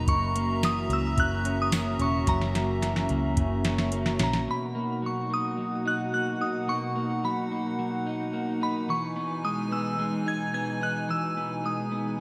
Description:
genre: dream pop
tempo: 109 BPM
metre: 4/4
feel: straight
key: B major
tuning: A4 = 440 Hz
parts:
  - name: glassy synth bell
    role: melody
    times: 0.0-12.2 s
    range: A#5 to G#6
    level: -33 LUFS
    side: equal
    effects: chorus, tremolo, delay
  - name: hollow soft pad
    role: sustained chords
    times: 0.0-12.2 s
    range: B2 to A#5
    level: -35 LUFS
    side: equal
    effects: chorus
  - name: electric guitar at the edge of break-up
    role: arpeggios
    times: 0.0-12.2 s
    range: F#2 to D#4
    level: -33 LUFS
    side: equal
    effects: analog chorus, delay
  - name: vintage muted picked electric bass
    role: bass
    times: 0.0-4.5 s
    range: E1 to C#2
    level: -32 LUFS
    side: equal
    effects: none
  - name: soft vintage rhythm box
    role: drums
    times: 0.1-4.5 s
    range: hi-hat, kick drum, snare drum, tambourine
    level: -31 LUFS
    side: equal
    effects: gated reverb
room: wet lush hall reverb, RT60 1.8 s, digital ambience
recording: bright 1980s-style digital production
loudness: -28 LUFS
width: mono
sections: 0.0-4.5 A section; 4.5-12.2 A section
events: drum fill 2.3-4.5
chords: 0.1 F#7; 4.5 Bmaj7; 8.9 Emaj7

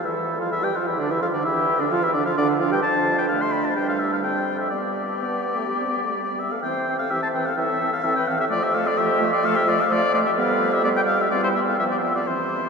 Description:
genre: quick classical-period movement for wind quintet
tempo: 128 BPM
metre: 4/4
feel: straight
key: unclear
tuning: A4 = 439 Hz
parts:
  - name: silver concert flute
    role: melody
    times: 0.0-12.7 s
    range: E4 to E5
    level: -30 LUFS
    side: left 4 dB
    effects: none
  - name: warm oboe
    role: second line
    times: 0.0-12.7 s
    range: C5 to C6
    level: -23 LUFS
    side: left 2 dB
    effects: none
  - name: mellow French horn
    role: accompaniment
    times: 0.0-12.7 s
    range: D3 to C4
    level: -30 LUFS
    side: right 1 dB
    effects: none
  - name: warm clarinet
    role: accompaniment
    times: 0.0-12.7 s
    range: A3 to G4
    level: -28 LUFS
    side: right 5 dB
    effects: none
  - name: warm bassoon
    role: bass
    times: 0.0-12.7 s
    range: D2 to C3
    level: -28 LUFS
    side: right 3 dB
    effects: none
room: wet cathedral reverb, RT60 5.4 s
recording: minimal, uncompressed stereo recording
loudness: -20 LUFS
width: side -5 dB against mid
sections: 0.0-12.7 A section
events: none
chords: 0.0 G7sus2/E; 1.0 Dm; 2.8 F6; 3.8 C/E; 4.7 G; 6.6 C; 7.6 Am; 8.5 Fmaj13; 10.4 G7/F; 11.3 C/E; 11.8 G7

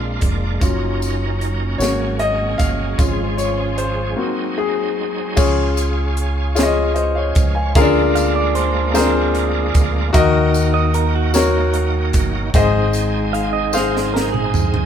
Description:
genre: slow gospel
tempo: 50 BPM (dotted quarters)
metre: 6/8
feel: straight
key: Db major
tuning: A4 = 440 Hz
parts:
  - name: clear concert grand piano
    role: accompaniment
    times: 0.0-14.9 s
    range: Ab2 to Ab5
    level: -19 LUFS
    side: left 3 dB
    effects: none
  - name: bright tonewheel organ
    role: sustained chords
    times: 0.0-14.9 s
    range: F3 to Ab5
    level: -26 LUFS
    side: right 4 dB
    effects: slow rotary speaker, chorus vibrato
  - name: dark studio string section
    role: sustained chords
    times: 0.0-5.4 s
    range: F3 to Gb4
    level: -30 LUFS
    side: equal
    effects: none
  - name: fingered electric bass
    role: bass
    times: 0.0-14.9 s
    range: F1 to Eb2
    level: -21 LUFS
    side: right 1 dB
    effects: none
  - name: crisp fusion drum kit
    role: drums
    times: 0.2-14.9 s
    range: crash cymbal, hi-hat, kick drum, snare drum, toms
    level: -19 LUFS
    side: right 1 dB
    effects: none
  - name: tambourine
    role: percussion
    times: 0.6-14.9 s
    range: none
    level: -31 LUFS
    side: left 3 dB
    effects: none
  - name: clean electric guitar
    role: second line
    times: 8.2-14.9 s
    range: Gb4 to F5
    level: -23 LUFS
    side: right 7 dB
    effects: none
room: light reverb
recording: band playing live in one room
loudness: -15 LUFS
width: side -8 dB against mid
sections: 0.0-5.4 A section; 5.4-14.9 B section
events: tonewheel organ fill 0.0-0.6; grand piano solo 0.0-5.4; break 4.2-5.4; drum fill 13.7-14.9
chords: 0.0 Bb7; 0.6 Ebm7/Gb; 1.8 Ab9sus4; 3.0 Db/Ab; 4.2 Ab7; 5.4 Db; 7.8 Bb7/D; 10.1 Ebm; 12.5 Ab

